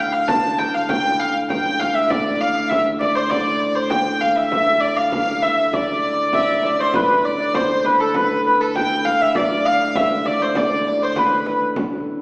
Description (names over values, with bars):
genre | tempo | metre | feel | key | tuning
medieval dance | 99 BPM | 2/4 | straight | D dorian | A4 = 440 Hz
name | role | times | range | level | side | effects
clear hurdy-gurdy | melody | 0.0-11.6 s | A4 to A5 | -17 LUFS | equal | none
pipe organ, sparkling flutes | drone | 0.0-12.2 s | D2 to A2 | -25 LUFS | equal | none
frame drum | percussion | 0.3-12.0 s | none | -27 LUFS | equal | none
concert harp | second line | 6.3-12.2 s | A4 to G5 | -24 LUFS | equal | none
room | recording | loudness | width
wet recital hall reverb, RT60 1.7 s | heard from further back in the room, small speaker sound | -16 LUFS | side -27 dB against mid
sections
0.0-6.9 A section; 6.9-12.2 A section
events
none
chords
none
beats
0.28 | 0.89 1.49 | 2.10 2.70 | 3.31 3.91 | 4.52 5.12 | 5.73 6.33 | 6.94 7.54 | 8.14 8.75 | 9.35 9.96 | 10.56 11.17 | 11.77